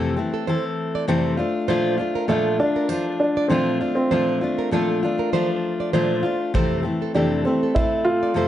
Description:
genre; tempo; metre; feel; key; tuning
acoustic pop; 99 BPM; 4/4; swing 55% on 16ths; unclear; A4 = 440 Hz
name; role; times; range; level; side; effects
dark upright piano; melody; 0.0-8.5 s; A3 to F4; -22 LUFS; right 1 dB; plate reverb, tape echo
fingerpicked steel-string acoustic guitar; accompaniment; 0.0-8.5 s; F2 to A4; -22 LUFS; left 2 dB; none
nylon-string guitar; arpeggios; 0.0-8.5 s; G4 to D5; -28 LUFS; right 7 dB; plate reverb, tape echo
kick drum; drums; 6.5-7.9 s; none; -24 LUFS; equal; none
room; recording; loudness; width
moderate studio reverb, RT60 0.6 s; nothing above 11.0 kHz; -19 LUFS; side -12 dB against mid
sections
0.0-8.5 A section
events
none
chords
0.0 Fmaj7; 1.4 Bbmaj7; 6.5 Fmaj7

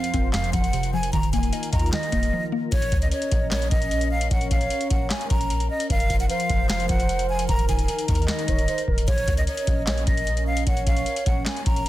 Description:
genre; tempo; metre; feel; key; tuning
hip hop, trap; 151 BPM; 4/4; half-time; Bb minor; A4 = 440 Hz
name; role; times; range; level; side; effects
breathy mellow silver concert flute; melody; 0.0-11.9 s; Db5 to Bb5; -28 LUFS; equal; tape echo
mallet-like synth pluck; accompaniment; 0.0-2.7 s; F2 to Eb5; -28 LUFS; left 1 dB; chorus, phaser
warm analog pad; sustained chords; 0.0-11.9 s; Eb3 to C5; -32 LUFS; equal; chorus
booming analog drum machine; drums; 0.0-11.9 s; handclaps, hi-hat, kick drum, snare drum; -24 LUFS; equal; none
clean 808-style bass; bass; 0.1-11.9 s; Eb1 to Eb2; -26 LUFS; equal; none
gliding portamento lead; second line; 2.7-11.8 s; Bb4 to Eb5; -32 LUFS; right 4 dB; chorus, tape echo
room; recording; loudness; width
little or no reverb; dense, heavily limited modern master; -20 LUFS; side -15 dB against mid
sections
0.0-2.7 A section; 2.7-11.9 B section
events
break 2.3-2.7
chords
0.0 Fsus4; 1.1 Ebsus2; 2.7 Bbm; 5.9 Fsus4; 7.5 Eb5; 9.1 Bbm

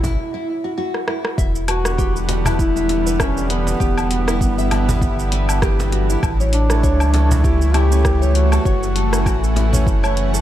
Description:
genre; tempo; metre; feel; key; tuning
organic downtempo; 99 BPM; 4/4; swing 56% on 16ths; E dorian; A4 = 440 Hz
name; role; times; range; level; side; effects
mellow duduk; melody; 0.0-9.6 s; B3 to G4; -25 LUFS; equal; diffuse ambient delay
nylon-string guitar; arpeggios; 0.0-10.4 s; C#4 to E5; -25 LUFS; left 1 dB; wide subtle chorus, diffuse ambient delay
warm sub bass; bass; 0.0-10.4 s; E1 to C#2; -18 LUFS; equal; sidechain pumping
deep house drum kit; drums; 0.0-10.4 s; hi-hat, rim click, shaker, woodblock; -25 LUFS; left 1 dB; overdrive
electronic kick drum; drums; 0.0-10.0 s; none; -20 LUFS; equal; overdrive
cajon; percussion; 0.0-9.8 s; none; -27 LUFS; right 1 dB; none
bowed-like drone; sustained chords; 1.8-10.4 s; E3 to F#5; -26 LUFS; right 1 dB; built-in reverb, sidechain pumping
hand-pumped harmonium; accompaniment; 1.8-10.4 s; D3 to C#5; -28 LUFS; right 3 dB; sidechain pumping, diffuse ambient delay
room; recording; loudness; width
light reverb, studio reverb; none; -15 LUFS; side -12 dB against mid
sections
0.0-1.4 A section; 1.4-10.4 B section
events
break 0.2-1.4; drum fill 0.9-1.4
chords
0.0 F#m7; 1.4 Emadd9; 6.2 A7; 8.7 F#m7

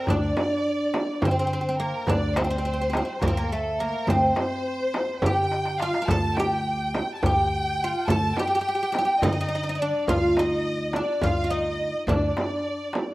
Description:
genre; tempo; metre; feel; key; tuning
Turkish makam ensemble; 210 BPM (eighths); 7/8; straight; D makam kurdi; A4 = 440 Hz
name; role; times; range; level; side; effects
oud; melody; 0.0-13.1 s; A3 to Bb4; -26 LUFS; equal; none
warm studio violin section; second line; 0.0-13.1 s; A4 to A5; -29 LUFS; right 1 dB; slapback echo
upright bass; bass; 0.1-12.3 s; D2 to D3; -29 LUFS; equal; none
darbuka; percussion; 0.1-13.1 s; none; -30 LUFS; left 1 dB; none
frame drum; percussion; 0.1-13.1 s; none; -29 LUFS; right 2 dB; none
room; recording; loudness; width
light reverb; recorded outdoors, with no room sound; -22 LUFS; side -18 dB against mid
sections
0.0-13.1 A section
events
drum fill 5.5-6.1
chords
none

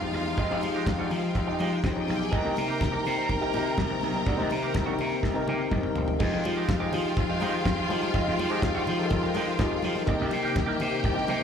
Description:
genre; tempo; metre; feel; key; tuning
disco; 124 BPM; 4/4; straight; F minor; A4 = 440 Hz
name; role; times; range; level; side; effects
clear studio string section; second line; 0.0-11.4 s; C4 to Bb5; -33 LUFS; right 2 dB; slapback echo
clean electric guitar; accompaniment; 0.0-11.4 s; Ab3 to G4; -35 LUFS; right 7 dB; wah, slapback echo
tine electric piano; accompaniment; 0.0-11.4 s; C3 to F5; -30 LUFS; left 6 dB; medium stereo tremolo, slapback echo
rich studio string section; sustained chords; 0.0-11.4 s; Eb3 to G5; -34 LUFS; left 2 dB; none
gritty slap bass; bass; 0.0-11.4 s; E1 to F3; -31 LUFS; right 1 dB; overdrive
damped 70s drum kit; drums; 0.1-11.4 s; crash cymbal, hi-hat, kick drum, snare drum, toms; -31 LUFS; right 1 dB; none
congas; percussion; 0.1-11.4 s; none; -38 LUFS; left 4 dB; slapback echo
room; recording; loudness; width
light reverb, small room ambience; live gig heard through the venue's PA, club reverb; -24 LUFS; side -7 dB against mid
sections
0.0-6.2 A section; 6.2-11.4 B section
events
drum fill 5.2-6.2; tine electric piano fill 5.2-6.2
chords
0.0 Fm9; 2.3 Cm7; 6.2 Fm9; 10.1 Cm7

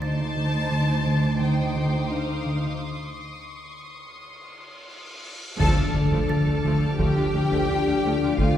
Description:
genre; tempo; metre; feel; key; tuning
cinematic, suspense film score; 86 BPM; 4/4; straight; D phrygian; A4 = 439 Hz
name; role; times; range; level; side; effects
rich symphonic violin section; melody; 0.0-8.6 s; F5 to A5; -34 LUFS; left 1 dB; none
warm symphonic violin section; second line; 0.0-8.6 s; Eb4 to A5; -32 LUFS; left 2 dB; none
smooth synth bass; riff; 0.0-8.6 s; D3 to D4; -24 LUFS; equal; none
rich studio double bass section; bass; 0.0-8.5 s; D2; -33 LUFS; right 2 dB; none
rich symphonic cello section; bass; 0.0-8.6 s; D2 to A4; -30 LUFS; right 2 dB; none
music box; texture; 0.0-2.1, 6.3-8.3 s; A6; -41 LUFS; right 3 dB; none
rich chamber violin section; texture; 0.0-8.6 s; C6 to F6; -38 LUFS; left 1 dB; none
cymbal swell and impact; sound effects; 4.8-8.4 s; none; -32 LUFS; equal; none
clear symphonic viola section; accompaniment; 5.6-8.6 s; F3 to F4; -30 LUFS; right 1 dB; none
mellow French horn section; sustained chords; 5.6-8.6 s; F3 to D4; -28 LUFS; left 7 dB; none
taiko ensemble; drums; 5.6-8.6 s; none; -29 LUFS; equal; none
room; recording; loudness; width
wet concert hall reverb, RT60 2.1 s; heard from further back in the room; -21 LUFS; side -10 dB against mid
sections
0.0-5.6 A section; 5.6-8.6 A section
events
break 2.8-5.6; cymbal swell 4.8-5.6; band accent 5.6-6.3; impact 5.6-8.4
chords
0.0 Cm/D; 5.6 Dm

